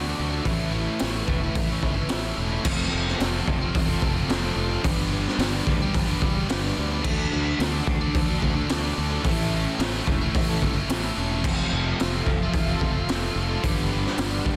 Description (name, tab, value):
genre	rock, shoegaze and dream pop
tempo	109 BPM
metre	4/4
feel	straight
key	unclear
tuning	A4 = 440 Hz
part	phased analog pad	sustained chords	0.0-2.6, 11.9-14.6 s	E4 to C#6	-40 LUFS	equal	phaser, chorus
part	biting overdriven guitar	riff	0.0-14.6 s	F2 to F4	-33 LUFS	equal	reverse reverb
part	distorted electric guitar	riff	0.0-14.6 s	F2 to D4	-35 LUFS	equal	distortion
part	overdriven semi-hollow guitar	riff	0.0-14.6 s	A2 to B4	-34 LUFS	equal	subtle chorus
part	fingered electric bass	bass	0.0-14.6 s	E1 to D2	-31 LUFS	equal	none
part	raw garage drum kit	drums	0.5-14.6 s	crash cymbal, hi-hat, kick drum, snare drum	-28 LUFS	equal	none
room	light reverb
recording	dense, heavily limited modern master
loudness	-24 LUFS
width	mono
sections	0.0-2.6 A section; 2.6-14.6 B section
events	none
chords	0.5 Aadd9; 2.6 F; 4.8 G; 7.0 D; 9.2 A; 11.4 Fmaj7; 13.6 Gmaj7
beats	| 0.45 1.00 1.55 2.10 | 2.65 3.20 3.75 4.30 | 4.85 5.39 5.94 6.49 | 7.04 7.59 8.14 8.69 | 9.24 9.79 10.34 10.88 | 11.44 11.98 12.53 13.08 | 13.63 14.19